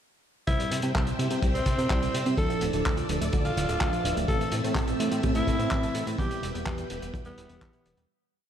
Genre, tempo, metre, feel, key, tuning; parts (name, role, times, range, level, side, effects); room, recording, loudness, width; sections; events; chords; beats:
italo disco; 126 BPM; 4/4; straight; A4 = 439 Hz
raspy alto saxophone; melody; 0.5-8.0 s; B3 to A4; -32 LUFS; equal; tape echo
string machine, full ensemble; sustained chords; 0.5-8.1 s; C4 to E6; -34 LUFS; equal; ensemble chorus
analog pluck; arpeggios; 0.5-8.1 s; B2 to E4; -36 LUFS; right 3 dB; chorus, phaser, cassette tape, tape echo
mellow synth brass; stabs; 0.5-8.1 s; E3 to E5; -35 LUFS; equal; chorus
fat analog bass; bass; 0.5-8.1 s; D1 to C3; -31 LUFS; equal
crunchy breakbeat drum kit; drums; 0.5-8.1 s; handclaps, hi-hat; -35 LUFS; equal
kick drum; drums; 0.5-7.7 s; -30 LUFS; equal
light reverb, small room ambience; dark, warm production; -25 LUFS; side -9 dB against mid
0.5-8.1 verse
fade-out 5.6-8.1
0.5 C; 2.4 Dmadd9; 4.3 Am; 6.2 Em
| 0.47 0.95 1.43 1.90 | 2.38 2.85 3.33 3.81 | 4.28 4.76 5.24 5.71 | 6.19 6.67 7.14 7.62